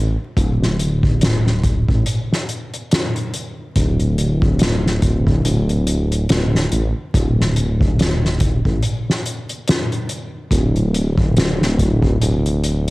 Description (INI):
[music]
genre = trip hop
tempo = 71 BPM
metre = 4/4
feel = swing 58% on 16ths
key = unclear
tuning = A4 = 441 Hz
[part]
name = dark detuned saw bass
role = bass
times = 0.0-12.9 s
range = D1 to A1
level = -17 LUFS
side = equal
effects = none
[part]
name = soft-mallet drum kit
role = drums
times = 0.4-12.9 s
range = hi-hat, kick drum, snare drum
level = -18 LUFS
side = equal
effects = cassette tape
[sound]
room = little or no reverb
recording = home recording on cassette, vinyl crackle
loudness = -15 LUFS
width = side -21 dB against mid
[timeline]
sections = 0.0-12.9 A section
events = none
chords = none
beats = | 0.38 1.22 2.06 2.91 | 3.76 4.60 5.45 6.29 | 7.14 7.98 8.83 9.67 | 10.52 11.36 12.21